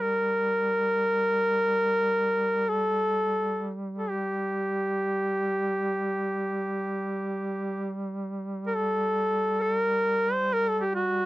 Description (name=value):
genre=caucasian folk, Caucasian lament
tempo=free time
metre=none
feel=none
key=G minor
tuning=A4 = 436 Hz
part: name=clear duduk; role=melody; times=0.0-11.3 s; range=F#4 to C5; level=-25 LUFS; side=equal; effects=none
part: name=warm duduk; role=drone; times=0.0-11.3 s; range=G3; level=-33 LUFS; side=right 1 dB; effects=none
room=light reverb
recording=dry, close 1970s-style studio recording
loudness=-25 LUFS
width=side -17 dB against mid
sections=0.0-11.3 A section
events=slowing down 9.5-11.3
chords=none